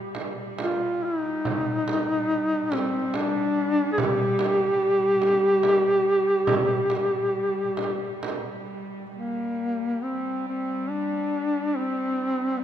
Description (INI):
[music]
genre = caucasian folk, Caucasian lament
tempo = 70 BPM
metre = 3/4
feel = rubato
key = G minor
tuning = A4 = 440 Hz
[part]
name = mellow duduk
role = melody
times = 0.0-12.6 s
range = Bb3 to Ab4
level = -23 LUFS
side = equal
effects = none
[part]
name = rich studio cello section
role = drone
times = 0.0-12.6 s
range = G3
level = -34 LUFS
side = right 2 dB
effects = none
[part]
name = frame drum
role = percussion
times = 0.1-8.4 s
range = none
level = -31 LUFS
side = right 2 dB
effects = none
[sound]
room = moderate cathedral reverb, RT60 5.2 s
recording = minimal, uncompressed stereo recording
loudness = -22 LUFS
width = side -10 dB against mid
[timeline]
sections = 0.0-9.1 A section; 9.1-12.6 B section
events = none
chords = none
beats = 0.58 | 1.44 2.30 3.14 | 3.98 4.81 5.64 | 6.48 7.33 8.22 | 9.14 10.03 10.90 | 11.76 12.60